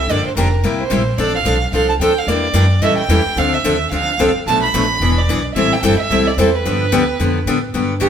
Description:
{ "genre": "acoustic string swing (jazz manouche)", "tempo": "220 BPM", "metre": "4/4", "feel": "swing 58% on 8ths", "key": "unclear", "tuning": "A4 = 441 Hz", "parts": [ { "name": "warm violin", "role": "melody", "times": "0.0-7.5 s", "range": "Bb4 to B5", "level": "-19 LUFS", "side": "right 4 dB", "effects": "none" }, { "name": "upright bass", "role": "bass", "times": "0.0-8.1 s", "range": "E1 to A2", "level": "-19 LUFS", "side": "equal", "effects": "none" }, { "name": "picked steel-string acoustic guitar", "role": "accompaniment", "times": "0.1-8.1 s", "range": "B2 to A4", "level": "-17 LUFS", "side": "left 2 dB", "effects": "none" }, { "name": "picked steel-string acoustic guitar", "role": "second line", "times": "8.0-8.1 s", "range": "G4", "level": "-14 LUFS", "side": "right 3 dB", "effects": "none" } ], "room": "wet stone room reverb, RT60 1.1 s", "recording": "band playing live in one room", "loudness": "-13 LUFS", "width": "side -8 dB against mid", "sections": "0.0-7.7 A section", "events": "none", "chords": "0.1 Gm7; 0.6 C7; 1.2 F6; 2.3 Em7b5; 2.8 A7; 3.4 Dm7; 4.5 Bm7b5; 5.0 E7; 5.6 Am7; 6.6 G7" }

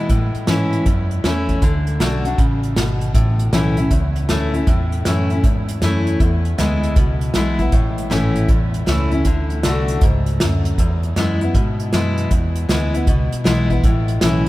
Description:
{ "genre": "honky-tonk and classic country", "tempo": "157 BPM", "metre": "4/4", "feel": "swing 65% on 8ths", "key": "A major", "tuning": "A4 = 440 Hz", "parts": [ { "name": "picked steel-string acoustic guitar", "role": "accompaniment", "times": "0.0-14.5 s", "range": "E2 to F#4", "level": "-19 LUFS", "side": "left 1 dB", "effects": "none" }, { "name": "vintage muted fingered electric bass", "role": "bass", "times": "0.0-14.5 s", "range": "G#1 to A2", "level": "-20 LUFS", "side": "equal", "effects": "none" }, { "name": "unplugged drum kit", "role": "drums", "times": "0.1-14.5 s", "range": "hi-hat, kick drum, snare drum", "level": "-19 LUFS", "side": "equal", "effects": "none" } ], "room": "moderate cathedral reverb, RT60 7.0 s", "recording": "in a vast, echoing space", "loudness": "-15 LUFS", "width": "side -17 dB against mid", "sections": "0.0-14.5 A section", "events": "none", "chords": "0.1 A; 1.6 D; 3.1 A; 6.2 E; 7.7 A; 9.3 D; 10.8 E; 13.8 A" }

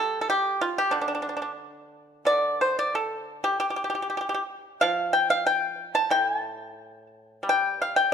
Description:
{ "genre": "chinese traditional, Chinese solo plucked strings", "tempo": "88-98 BPM", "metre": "2/4", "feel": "rubato", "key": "D yu mode", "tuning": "A4 = 440 Hz", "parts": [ { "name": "pipa", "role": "solo", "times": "0.0-8.1 s", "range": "A2 to A5", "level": "-23 LUFS", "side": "equal", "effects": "none" } ], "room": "moderate recital hall reverb, RT60 1.7 s", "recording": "minimal, uncompressed stereo recording", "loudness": "-23 LUFS", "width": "side -7 dB against mid", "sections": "0.0-2.3 A section; 2.3-8.1 B section", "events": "none", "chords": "none" }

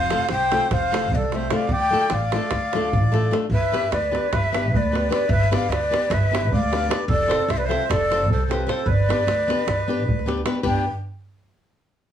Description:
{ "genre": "balkan folk, Balkan wedding band", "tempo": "302 BPM (eighths)", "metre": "9/8", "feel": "straight", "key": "G mixolydian", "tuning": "A4 = 441 Hz", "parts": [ { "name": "breathy ney", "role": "melody", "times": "0.0-10.9 s", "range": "B4 to G5", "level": "-24 LUFS", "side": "left 2 dB", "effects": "none" }, { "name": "accordion", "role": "second line", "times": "0.0-10.9 s", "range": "D4 to D5", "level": "-27 LUFS", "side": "right 4 dB", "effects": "none" }, { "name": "upright bass", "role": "bass", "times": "0.0-10.8 s", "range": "F1 to D2", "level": "-25 LUFS", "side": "right 1 dB", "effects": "none" }, { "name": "flamenco guitar", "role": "accompaniment", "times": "0.1-10.8 s", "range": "A3 to C5", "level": "-26 LUFS", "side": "left 4 dB", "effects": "none" }, { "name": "davul", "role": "percussion", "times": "0.1-10.8 s", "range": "none", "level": "-26 LUFS", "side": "right 2 dB", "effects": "none" } ], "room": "moderate studio reverb, RT60 0.5 s", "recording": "studio ambience", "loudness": "-19 LUFS", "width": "side -9 dB against mid", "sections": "0.0-10.6 A section; 10.6-12.1 B section", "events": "speeding up 0.0-12.1", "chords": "0.0 F; 1.7 Dm; 3.5 G; 7.1 F; 8.9 G" }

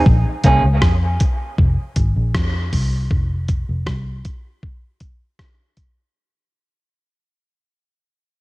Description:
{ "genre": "dub reggae", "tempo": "79 BPM", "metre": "4/4", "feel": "straight", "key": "Bb minor", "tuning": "A4 = 437 Hz", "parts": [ { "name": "vintage muted fingered electric bass", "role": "bass", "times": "0.1-4.2 s", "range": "F1 to F2", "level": "-18 LUFS", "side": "equal", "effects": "none" }, { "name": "dusty soul sampler-style drum kit", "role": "drums", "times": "0.1-5.9 s", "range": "hi-hat, kick drum, rim click", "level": "-18 LUFS", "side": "equal", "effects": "cassette tape" }, { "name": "electric guitar through a small old amp", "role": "accompaniment", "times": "0.4-0.6 s", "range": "Bb3 to Ab4", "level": "-20 LUFS", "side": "right 2 dB", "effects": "cassette tape, dub echo" } ], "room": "digital ambience", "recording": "home recording on cassette", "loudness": "-16 LUFS", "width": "side -20 dB against mid", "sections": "0.1-6.2 A section", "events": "break 0.1-6.2; fade-out 0.1-6.2", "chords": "0.1 Bbm7; 3.1 F5" }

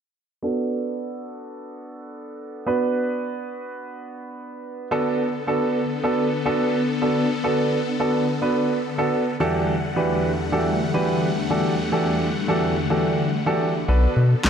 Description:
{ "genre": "dance-pop", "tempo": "107 BPM", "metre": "4/4", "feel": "straight", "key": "B minor", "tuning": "A4 = 441 Hz", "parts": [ { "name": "warm baby grand piano", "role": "accompaniment", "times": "0.4-14.5 s", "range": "E3 to B4", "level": "-22 LUFS", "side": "right 2 dB", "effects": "low-pass filter" }, { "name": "supersaw chords", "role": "sustained chords", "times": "4.9-14.5 s", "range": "E2 to F#5", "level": "-25 LUFS", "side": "left 3 dB", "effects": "phaser" }, { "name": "round analog bass", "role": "bass", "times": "13.9-14.5 s", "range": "B1 to B2", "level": "-16 LUFS", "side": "left 1 dB", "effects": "none" }, { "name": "electronic snare drum and handclaps", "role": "drums", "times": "14.4-14.5 s", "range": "none", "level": "-17 LUFS", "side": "left 1 dB", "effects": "none" } ], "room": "moderate lush hall reverb, RT60 1.8 s, digital ambience", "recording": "dark, warm production", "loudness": "-20 LUFS", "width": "side -7 dB against mid", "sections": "0.4-4.9 A section; 4.9-14.5 B section", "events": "filter sweep on grand piano 0.4-4.9", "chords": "0.4 Bm7; 9.4 Em11; 13.9 Bm7" }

